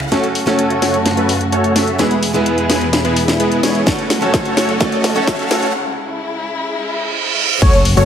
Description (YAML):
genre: EDM, festival progressive house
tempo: 128 BPM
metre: 4/4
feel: straight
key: F# minor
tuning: A4 = 440 Hz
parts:
  - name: picked steel-string acoustic guitar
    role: accompaniment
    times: 0.0-5.7 s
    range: G#3 to A4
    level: -21 LUFS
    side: right 4 dB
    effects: sidechain pumping, tape echo
  - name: dark studio string section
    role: sustained chords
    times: 0.0-8.1 s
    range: C#2 to F#4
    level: -22 LUFS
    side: left 2 dB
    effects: sidechain pumping
  - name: house drum kit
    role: drums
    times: 0.0-8.1 s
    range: crash cymbal, finger snaps, hi-hat, ride cymbal, snare drum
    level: -19 LUFS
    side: left 1 dB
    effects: none
  - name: riser, reverse cymbal and sub drop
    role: sound effects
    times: 0.0-8.1 s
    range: none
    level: -22 LUFS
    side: right 3 dB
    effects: none
  - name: supersaw chords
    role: riff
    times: 0.1-8.1 s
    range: G#3 to E5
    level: -18 LUFS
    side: equal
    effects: sidechain pumping, low-pass filter, tape echo
  - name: electronic kick drum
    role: drums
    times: 3.9-7.7 s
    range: none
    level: -15 LUFS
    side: equal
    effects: none
  - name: wide unison lead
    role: arpeggios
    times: 7.6-8.1 s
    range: C#5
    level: -15 LUFS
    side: left 1 dB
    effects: sidechain pumping
  - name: fat analog bass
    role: bass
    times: 7.6-8.1 s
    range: F#1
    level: -14 LUFS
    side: equal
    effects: sidechain pumping
room: moderate lush hall reverb, RT60 2.1 s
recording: high-pass filter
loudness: -13 LUFS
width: side -8 dB against mid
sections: 0.1-7.6 A section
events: build-up 0.1-7.6; drum fill 0.1-5.7; filter sweep on supersaw synth 0.1-7.6; filter sweep 0.1-7.6; break 5.7-7.6; reverse cymbal 6.9-7.6; impact 7.6-8.1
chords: 0.1 F#m; 2.0 E; 3.9 F#m; 5.7 C#m